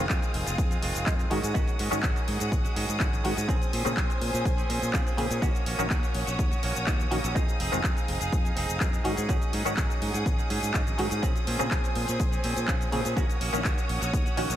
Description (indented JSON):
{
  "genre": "filtered disco house",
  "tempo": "124 BPM",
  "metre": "4/4",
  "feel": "straight",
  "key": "Eb dorian",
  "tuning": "A4 = 442 Hz",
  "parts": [
    { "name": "muted clav", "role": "accompaniment", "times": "0.0-14.5 s", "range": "Db3 to Ab4", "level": "-33 LUFS", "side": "equal", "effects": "phaser, vintage 12-bit sampler grit, sidechain pumping" },
    { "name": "rich symphonic violin section", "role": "sustained chords", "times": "0.0-14.6 s", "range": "Ab4 to Eb6", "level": "-34 LUFS", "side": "left 2 dB", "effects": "vintage 12-bit sampler grit, sidechain pumping" },
    { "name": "direct-recorded clean electric guitar", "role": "riff", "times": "0.0-14.6 s", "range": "Eb3 to Ab4", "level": "-34 LUFS", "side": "right 5 dB", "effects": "sidechain pumping" },
    { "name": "overdriven fingered electric bass", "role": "bass", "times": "0.0-14.6 s", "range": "F1 to Bb2", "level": "-32 LUFS", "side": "equal", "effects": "sidechain pumping" },
    { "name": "electronic kick drum", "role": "drums", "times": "0.1-14.2 s", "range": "none", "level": "-28 LUFS", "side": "equal", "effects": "none" },
    { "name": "house drum kit", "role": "drums", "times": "0.1-14.6 s", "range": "handclaps, hi-hat, shaker", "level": "-34 LUFS", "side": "left 2 dB", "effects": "sidechain pumping on hats, sidechain pumping on perc, sidechain pumping on cymbals" }
  ],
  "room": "light reverb, digital ambience",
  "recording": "none",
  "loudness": "-24 LUFS",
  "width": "side -12 dB against mid",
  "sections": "0.0-14.6 A section",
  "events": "none",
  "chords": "0.0 Fm7; 1.3 Ab7sus4; 3.5 Bbm9; 5.4 Ebm7; 7.4 Fm7; 9.1 Ab7sus4; 11.2 Bbm9; 13.2 Ebm7"
}